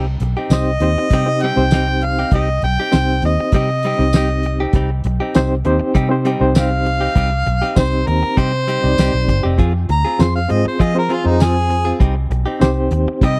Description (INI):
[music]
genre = straight-eighth soul blues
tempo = 99 BPM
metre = 4/4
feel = straight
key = C minor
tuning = A4 = 439 Hz
[part]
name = direct-recorded clean electric guitar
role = stabs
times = 0.0-13.4 s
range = F3 to Ab4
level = -26 LUFS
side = equal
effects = spring reverb
[part]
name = vintage muted fingered electric bass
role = bass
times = 0.0-13.4 s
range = F1 to F3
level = -21 LUFS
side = equal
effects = none
[part]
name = cloth-damped thuddy drum kit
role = drums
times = 0.2-13.4 s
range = hi-hat, kick drum, snare drum, tambourine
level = -18 LUFS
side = equal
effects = none
[part]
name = mellow harmonica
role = melody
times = 0.5-13.4 s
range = Eb4 to C6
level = -22 LUFS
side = equal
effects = overdrive
[part]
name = barky reed electric piano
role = accompaniment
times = 0.5-13.3 s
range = C4 to Eb5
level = -22 LUFS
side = equal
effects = overdrive, fast tremolo
[sound]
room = little or no reverb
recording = dry, close 1970s-style studio recording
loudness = -16 LUFS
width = mono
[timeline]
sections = 0.0-13.4 A section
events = harmonica solo 0.0-13.4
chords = 0.0 Cm; 9.6 Fm; 12.0 Cm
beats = 0.51 1.11 1.72 | 2.33 2.93 3.54 4.14 | 4.75 5.35 5.96 6.56 | 7.17 7.77 8.38 8.98 | 9.59 10.19 10.80 11.40 | 12.01 12.61 13.22